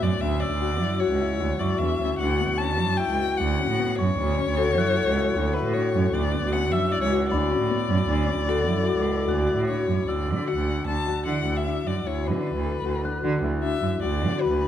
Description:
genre	contemporary instrumental, chamber music in an uneven meter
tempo	152 BPM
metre	5/4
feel	straight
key	D major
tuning	A4 = 444 Hz
part	dark violin	melody	0.0-14.7 s	B4 to A5	-29 LUFS	left 5 dB	none
part	Celtic harp	arpeggios	0.0-14.7 s	B3 to A4	-28 LUFS	left 5 dB	none
part	warm cello	bass	0.0-14.7 s	C#2 to D3	-26 LUFS	right 4 dB	none
part	glockenspiel with rubber mallets	texture	0.4-13.7 s	B5 to B6	-35 LUFS	left 1 dB	none
part	vibraphone with medium hard mallets	second line	2.2-9.8 s	F#4 to A4	-29 LUFS	left 2 dB	none
room	moderate recital hall reverb, RT60 1.4 s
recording	none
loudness	-22 LUFS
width	side -10 dB against mid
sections	0.0-10.1 A section; 10.1-14.7 B section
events	none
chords	0.0 Dmaj7; 10.1 D6

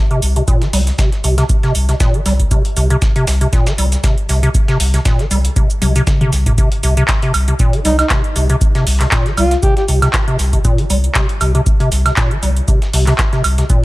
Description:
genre	acid house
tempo	118 BPM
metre	4/4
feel	swing 54% on 16ths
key	C minor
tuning	A4 = 438 Hz
part	acid bass, square	riff	0.1-13.8 s	Bb2 to G3	-18 LUFS	equal	overdrive, lush chorus, vintage 12-bit sampler grit, sidechain pumping, analog delay
part	booming analog drum machine	drums	0.1-13.8 s	handclaps, hi-hat, toms, woodblock	-20 LUFS	right 1 dB	none
part	warm sub bass	bass	0.2-13.6 s	C2	-15 LUFS	equal	tube saturation, sidechain pumping
part	dusty soul sampler-style drum kit	drums	0.2-13.8 s	hi-hat, shaker, snare drum	-26 LUFS	equal	sidechain pumping on perc, high-pass filter on perc, high-pass filter on snare, sidechain pumping on hats, high-pass filter on hats
part	electronic kick drum	drums	0.5-13.8 s	none	-15 LUFS	equal	none
part	dark alto saxophone	melody	7.9-9.8 s	Eb4 to G4	-19 LUFS	equal	analog delay
room	little or no reverb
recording	none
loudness	-12 LUFS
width	side -19 dB against mid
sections	0.0-13.8 A section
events	filter sweep on acid bass 0.0-13.8; drum fill 5.8-6.6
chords	none

